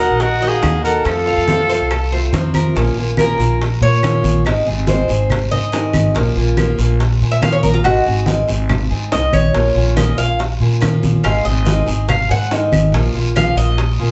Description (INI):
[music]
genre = latin, Cuban son and guajira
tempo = 142 BPM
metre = 4/4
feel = straight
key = Bb minor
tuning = A4 = 440 Hz
[part]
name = warm trumpet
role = melody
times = 0.0-2.3 s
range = Gb4 to Bb4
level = -20 LUFS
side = equal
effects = none
[part]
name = dark erhu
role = second line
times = 0.0-2.3 s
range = Eb5 to Gb5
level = -28 LUFS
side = equal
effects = none
[part]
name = picked acoustic archtop guitar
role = accompaniment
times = 0.0-14.1 s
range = C3 to Ab4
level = -24 LUFS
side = equal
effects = none
[part]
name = Cuban tres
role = arpeggios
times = 0.0-14.1 s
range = Eb4 to Gb5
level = -22 LUFS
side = equal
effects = none
[part]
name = upright bass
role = bass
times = 0.0-14.1 s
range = Ab1 to Bb2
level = -20 LUFS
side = equal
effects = none
[part]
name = bongos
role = percussion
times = 0.2-14.0 s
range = none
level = -29 LUFS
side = equal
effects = none
[part]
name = congas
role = percussion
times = 0.2-14.1 s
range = none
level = -23 LUFS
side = equal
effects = none
[part]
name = guiro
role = percussion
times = 0.2-14.1 s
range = none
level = -34 LUFS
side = equal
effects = none
[part]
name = claves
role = percussion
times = 0.6-13.6 s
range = none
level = -32 LUFS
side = equal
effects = none
[sound]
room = wet small room reverb, RT60 0.6 s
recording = heard from further back in the room, nothing above 8.0 kHz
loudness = -16 LUFS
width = mono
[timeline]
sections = 0.0-2.8 A section; 2.8-14.1 B section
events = Cuban tres solo 2.8-14.1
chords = 0.0 Ebm; 1.1 F; 2.8 Bbm; 4.5 Ab; 6.2 Bbm; 7.8 Ab; 9.5 Bbm; 11.2 Ab; 12.9 Bbm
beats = 0.21 0.63 | 1.06 1.48 1.91 2.33 | 2.76 3.18 3.61 4.03 | 4.46 4.88 5.31 5.73 | 6.15 6.58 7.00 7.43 | 7.85 8.27 8.70 9.12 | 9.55 9.97 10.39 10.82 | 11.24 11.66 12.09 12.51 | 12.94 13.36 13.78